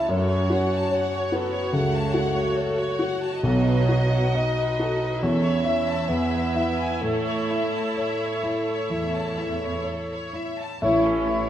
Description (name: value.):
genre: classical.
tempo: 61-73 BPM.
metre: 4/4.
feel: rubato.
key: A major.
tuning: A4 = 444 Hz.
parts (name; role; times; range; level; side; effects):
rich chamber violin section; melody; 0.0-11.5 s; A4 to E5; -35 LUFS; left 2 dB; none.
warm grand piano; melody; 0.0-11.5 s; B1 to E5; -25 LUFS; left 1 dB; none.
rich chamber violin section; second line; 0.0-11.5 s; C#4 to A5; -32 LUFS; left 3 dB; none.
dark bassoon; accompaniment; 0.0-11.5 s; F#3 to E4; -28 LUFS; right 2 dB; none.
rich chamber viola section; accompaniment; 0.0-11.5 s; A3 to F#4; -33 LUFS; right 2 dB; none.
rich chamber cello section; bass; 0.1-11.5 s; C#2 to B2; -31 LUFS; right 3 dB; none.
mellow clarinet; second line; 10.8-11.5 s; E4; -30 LUFS; left 3 dB; none.
mellow hollow silver concert flute; second line; 10.8-11.5 s; E5; -31 LUFS; left 4 dB; none.
warm cor anglais; second line; 10.8-11.5 s; C#5; -31 LUFS; right 1 dB; none.
dark French horn section; sustained chords; 10.8-11.2 s; E3 to E4; -29 LUFS; right 2 dB; none.
dark trumpet section; stabs; 10.8-11.4 s; E4; -28 LUFS; right 2 dB; none.
clear chamber double bass section; bass; 10.8-11.5 s; A1; -35 LUFS; right 2 dB; none.
warm tuba; bass; 10.8-11.5 s; A1; -33 LUFS; right 3 dB; none.
room: moderate scoring stage reverb, RT60 1.6 s.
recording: none.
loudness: -21 LUFS.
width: side -11 dB against mid.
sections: 0.0-10.8 A section.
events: none.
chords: 0.1 F#m; 3.4 B7; 5.2 A/E; 6.1 E; 7.0 A.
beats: | 0.10 0.92 1.75 2.58 | 3.44 4.37 5.22 6.08 | 7.01 7.97 8.91 9.87 | 10.82.